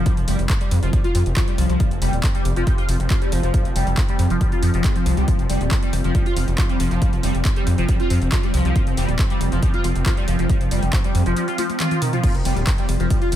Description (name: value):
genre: driving peak-time techno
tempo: 138 BPM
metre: 4/4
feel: straight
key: unclear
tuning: A4 = 439 Hz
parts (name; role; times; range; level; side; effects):
- overdriven synth lead; riff; 0.0-13.3 s; Eb3 to F4; -24 LUFS; left 1 dB; phaser, tube saturation, ensemble chorus, sidechain pumping, dub echo
- gritty driven synth bass; bass; 0.0-13.4 s; Eb1 to F2; -20 LUFS; equal; sidechain pumping
- swarming drone; drone; 0.0-13.4 s; F3 to C4; -29 LUFS; right 2 dB; built-in reverb, sidechain pumping
- electronic kick drum; drums; 0.1-13.2 s; none; -20 LUFS; equal; studio reverb
- techno drum kit; drums; 0.1-13.4 s; crash cymbal, handclaps, hi-hat, ride cymbal, toms; -28 LUFS; equal; overdrive, studio reverb
room: digital ambience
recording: echo-heavy mix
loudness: -17 LUFS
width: side -11 dB against mid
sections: 0.0-13.4 A section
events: drum fill 11.6-12.2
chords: 0.0 F5